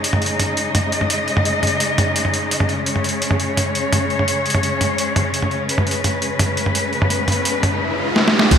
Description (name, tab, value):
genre	half-time drum and bass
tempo	170 BPM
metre	4/4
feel	half-time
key	unclear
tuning	A4 = 440 Hz
part	clear studio cello section	sustained chords	0.0-8.6 s	C#3 to D#5	-20 LUFS	left 1 dB	sidechain pumping
part	boom bap sampler-style drum kit	drums	0.0-8.6 s	crash cymbal, hi-hat, snare drum, toms	-19 LUFS	right 1 dB	overdrive, gated reverb
part	riser and impact	sound effects	6.8-8.6 s	none	-23 LUFS	equal	none
part	saturated sub bass	bass	8.5-8.6 s	none	barely audible	none	none
part	electronic kick drum	drums	8.5-8.6 s	none	-12 LUFS	equal	none
room	wet plate reverb, RT60 1.7 s, digital ambience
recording	bright 1980s-style digital production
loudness	-16 LUFS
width	side -8 dB against mid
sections	0.0-8.5 A section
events	riser 6.8-8.5; drum fill 8.2-8.5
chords	0.0 C#5